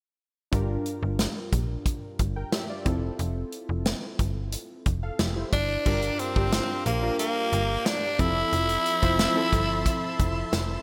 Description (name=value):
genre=1980s-style pop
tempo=90 BPM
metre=4/4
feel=straight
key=G dorian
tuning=A4 = 439 Hz
part: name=warm analog keys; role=accompaniment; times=0.5-10.8 s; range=G2 to G5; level=-35 LUFS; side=equal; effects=chorus
part: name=slap-like FM bass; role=bass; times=0.5-10.8 s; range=F1 to Bb1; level=-31 LUFS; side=equal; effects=none
part: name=modern studio drum kit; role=drums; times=0.5-10.7 s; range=crash cymbal, hi-hat, kick drum, snare drum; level=-30 LUFS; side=equal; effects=gated reverb
part: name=growling tenor saxophone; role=melody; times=5.5-10.8 s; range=Bb3 to E4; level=-28 LUFS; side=equal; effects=none
part: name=string machine, violins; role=sustained chords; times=5.9-10.8 s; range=F3 to D6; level=-39 LUFS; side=equal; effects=ensemble chorus
room=moderate lush hall reverb, RT60 2.7 s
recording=bright 1980s-style digital production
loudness=-27 LUFS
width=mono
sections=0.5-5.9 A section; 5.9-10.8 B section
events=none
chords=0.5 Gm7; 2.9 Fmaj7; 5.5 G5; 5.9 Gm7; 8.2 Fmaj7